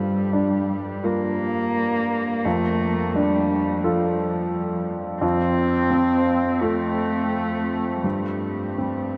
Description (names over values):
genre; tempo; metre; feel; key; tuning
neoclassical piano and strings; 85 BPM; 4/4; rubato; G minor; A4 = 439 Hz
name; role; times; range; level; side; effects
muted cello; second line; 0.0-9.2 s; F3 to C4; -26 LUFS; equal; none
clear grand piano; accompaniment; 0.0-9.2 s; F2 to Bb4; -26 LUFS; equal; none
room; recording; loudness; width
wet huge ambient reverb, RT60 6.9 s; dreamy mix soaked in reverb; -23 LUFS; mono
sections
0.0-9.2 A section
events
none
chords
0.0 Gm7; 2.4 Dm/F; 5.2 F; 8.0 Eb6/G (rootless)